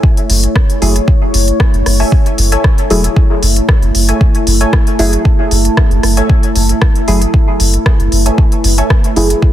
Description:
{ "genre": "dub techno", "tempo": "115 BPM", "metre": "4/4", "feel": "swing 53% on 16ths", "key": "F# minor", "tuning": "A4 = 442 Hz", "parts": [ { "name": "deep dark ambient pad", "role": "sustained chords", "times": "0.0-9.5 s", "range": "A3 to C#5", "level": "-17 LUFS", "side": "right 1 dB", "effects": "chorus, built-in reverb, sidechain pumping" }, { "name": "filtered dub chord stab", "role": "riff", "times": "0.0-8.9 s", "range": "A4 to G#5", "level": "-22 LUFS", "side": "left 2 dB", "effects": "wide subtle chorus, sidechain pumping, dub echo" }, { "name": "electronic kick drum", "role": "drums", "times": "0.0-9.5 s", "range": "none", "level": "-10 LUFS", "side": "equal", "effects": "none" }, { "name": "deep house drum kit", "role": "drums", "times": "0.2-9.4 s", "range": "hi-hat, rim click", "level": "-17 LUFS", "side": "left 1 dB", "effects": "soft clipping on snare" }, { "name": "warm sub bass", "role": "bass", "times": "0.3-9.3 s", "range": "E1 to F#1", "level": "-12 LUFS", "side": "equal", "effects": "sidechain pumping" }, { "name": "deep mellow chord stab", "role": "stabs", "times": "0.8-9.3 s", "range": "F#3 to G#4", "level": "-18 LUFS", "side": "equal", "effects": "chorus, phaser, cassette tape, sidechain pumping, dub echo" } ], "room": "digital ambience", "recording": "dense, heavily limited modern master", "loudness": "-9 LUFS", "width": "side -12 dB against mid", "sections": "0.0-9.5 A section", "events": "none", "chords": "0.0 F#m9", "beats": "0.03 0.56 | 1.08 1.60 2.12 2.64 | 3.17 3.69 4.21 4.73 | 5.25 5.77 6.29 6.82 | 7.34 7.86 8.38 8.90 | 9.43" }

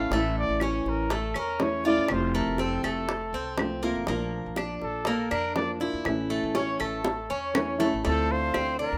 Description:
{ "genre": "latin, Cuban son and guajira", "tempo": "121 BPM", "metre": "4/4", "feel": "straight", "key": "unclear", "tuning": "A4 = 440 Hz", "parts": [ { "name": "breathy trumpet", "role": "melody", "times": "0.0-9.0 s", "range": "A4 to F5", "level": "-33 LUFS", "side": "equal", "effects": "none" }, { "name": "flamenco guitar", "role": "accompaniment", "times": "0.0-9.0 s", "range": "C3 to F4", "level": "-32 LUFS", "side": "equal", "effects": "plate reverb" }, { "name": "Cuban tres", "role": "arpeggios", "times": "0.0-9.0 s", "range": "A3 to F4", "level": "-34 LUFS", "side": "equal", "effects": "slapback echo" }, { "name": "upright bass", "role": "bass", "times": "0.0-9.0 s", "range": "F1 to F2", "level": "-37 LUFS", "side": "equal", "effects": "none" }, { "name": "bongos", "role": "percussion", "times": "0.1-8.8 s", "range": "none", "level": "-34 LUFS", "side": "equal", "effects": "none" }, { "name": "claves", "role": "percussion", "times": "0.6-8.8 s", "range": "none", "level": "-37 LUFS", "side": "equal", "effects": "none" }, { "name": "bright silver concert flute", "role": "second line", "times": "8.1-9.0 s", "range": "C5 to F5", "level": "-39 LUFS", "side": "equal", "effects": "none" } ], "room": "wet studio reverb, RT60 0.6 s", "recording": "rough home demo mix", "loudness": "-28 LUFS", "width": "mono", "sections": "0.0-8.0 A section", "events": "trumpet solo 0.0-8.0; drum fill 7.1-8.0", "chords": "0.0 A; 2.1 F; 4.1 Bb; 6.1 A; 8.0 Dm7", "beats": "| 0.12 0.61 1.11 1.60 | 2.10 2.59 3.09 3.58 | 4.08 4.57 5.07 5.57 | 6.06 6.56 7.05 7.55 | 8.04 8.54" }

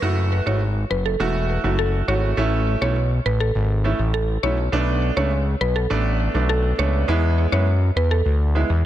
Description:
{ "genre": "dancehall", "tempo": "102 BPM", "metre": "4/4", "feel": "straight", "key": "F# minor", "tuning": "A4 = 440 Hz", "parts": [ { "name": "clear baby grand piano", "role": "accompaniment", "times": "0.0-8.7 s", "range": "G#3 to F#4", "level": "-24 LUFS", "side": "right 4 dB", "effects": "none" }, { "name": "fat analog bass", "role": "bass", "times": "0.0-8.8 s", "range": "E1 to F#2", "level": "-20 LUFS", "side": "equal", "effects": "none" }, { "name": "mallet-like synth pluck", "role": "melody", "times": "0.5-8.2 s", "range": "A4 to C#5", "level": "-26 LUFS", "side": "equal", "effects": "chorus, tape echo" } ], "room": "light reverb, digital ambience", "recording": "dense, heavily limited modern master", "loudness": "-18 LUFS", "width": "side -12 dB against mid", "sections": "0.0-8.9 A section", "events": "none", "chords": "0.0 F#m7; 2.4 A; 4.7 Bm7; 7.1 E", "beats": "| 0.02 0.61 1.20 1.79 | 2.38 2.96 3.55 4.14 | 4.73 5.32 5.91 6.49 | 7.08 7.67 8.26" }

